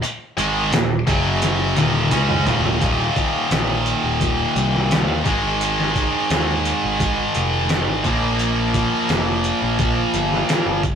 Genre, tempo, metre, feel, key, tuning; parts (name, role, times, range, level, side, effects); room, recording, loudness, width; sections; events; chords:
classic rock; 86 BPM; 4/4; straight; A4 = 436 Hz
tight distorted guitar; riff; 0.0-10.8 s; Eb2 to Db4; -19 LUFS; equal; distortion
modern bright picked electric bass; bass; 0.0-11.0 s; Eb1 to Eb2; -24 LUFS; equal
trip hop sampler-style drum kit; drums; 0.0-11.0 s; hi-hat, kick drum, snare drum, toms; -22 LUFS; equal
moderate stone room reverb, RT60 1.1 s; rough rehearsal-room recording, tube saturation; -17 LUFS; side -7 dB against mid
0.0-2.8 A section; 2.8-11.0 B section
drum fill 1.4-2.8
0.0 Eb5; 1.1 Gb5; 1.8 Eb5; 5.3 Ab5; 8.0 Bb5